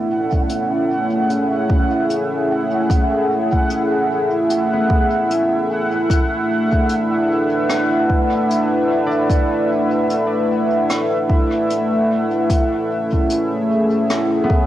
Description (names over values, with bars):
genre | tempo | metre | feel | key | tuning
ambient dub | 75 BPM | 4/4 | swing 57% on 16ths | unclear | A4 = 445 Hz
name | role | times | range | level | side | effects
warm analog pad | sustained chords | 0.0-14.7 s | A3 to E5 | -17 LUFS | equal | chorus, cassette tape
bubbling stepped-filter texture | texture | 0.0-14.7 s | F#5 | -24 LUFS | right 1 dB | chorus, built-in reverb, cassette tape
electronic kick drum | drums | 0.3-14.7 s | none | -17 LUFS | equal | cassette tape
jazz brush drum kit | drums | 0.5-14.3 s | hi-hat, rim click | -28 LUFS | left 1 dB | cassette tape, dub echo
concert harp | arpeggios | 4.7-14.7 s | B3 to D5 | -30 LUFS | equal | cassette tape, tape echo
room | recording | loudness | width
light reverb | home recording on cassette | -15 LUFS | side -13 dB against mid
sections
0.0-14.7 A section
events
none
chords
0.0 Amaj7; 6.1 Bm7; 12.5 Amaj7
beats
0.50 1.30 2.10 | 2.90 3.70 4.50 5.30 | 6.10 6.90 7.70 8.50 | 9.30 10.10 10.90 11.70 | 12.50 13.30 14.10